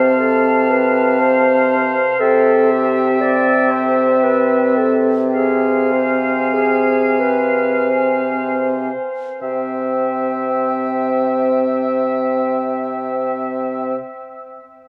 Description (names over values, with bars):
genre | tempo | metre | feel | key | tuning
classical, slow romantic movement for wind quintet | 38-61 BPM | 3/4 | rubato | C major | A4 = 436 Hz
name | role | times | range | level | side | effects
mellow silver concert flute | melody | 0.0-14.0 s | G5 to A5 | -27 LUFS | equal | none
clear oboe | second line | 0.0-14.0 s | E5 to F5 | -25 LUFS | equal | none
clear French horn | accompaniment | 0.0-14.0 s | C4 | -24 LUFS | equal | none
warm clarinet | accompaniment | 0.0-14.0 s | G4 to D5 | -22 LUFS | equal | none
clear bassoon | bass | 0.0-14.0 s | C3 | -22 LUFS | equal | none
room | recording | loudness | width
wet cathedral reverb, RT60 5.4 s | in a vast, echoing space | -17 LUFS | mono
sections
0.0-9.4 A section; 9.4-13.7 B section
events
slowing down 0.7-9.4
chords
0.0 F/C; 2.2 C; 5.3 Fm/C; 9.4 C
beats
0.19 1.20 | 2.19 3.20 4.23 | 5.34 6.54 7.91 | 9.42 10.85 12.27